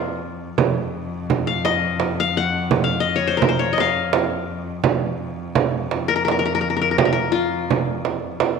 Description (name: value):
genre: Arabic maqam ensemble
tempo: 84 BPM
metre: 3/4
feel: straight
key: unclear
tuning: A4 = 440 Hz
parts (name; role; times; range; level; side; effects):
- qanun; melody; 0.0-8.6 s; F4 to Gb5; -21 LUFS; left 8 dB; none
- rich cello; drone; 0.0-8.6 s; F2; -28 LUFS; left 1 dB; none
- frame drum; percussion; 0.6-8.6 s; none; -21 LUFS; right 8 dB; none
room: wet echo chamber reverb, RT60 1.7 s, small room ambience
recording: 1960s-style stereo with parts hard left and right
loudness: -18 LUFS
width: side -5 dB against mid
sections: 0.0-8.6 A section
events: none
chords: none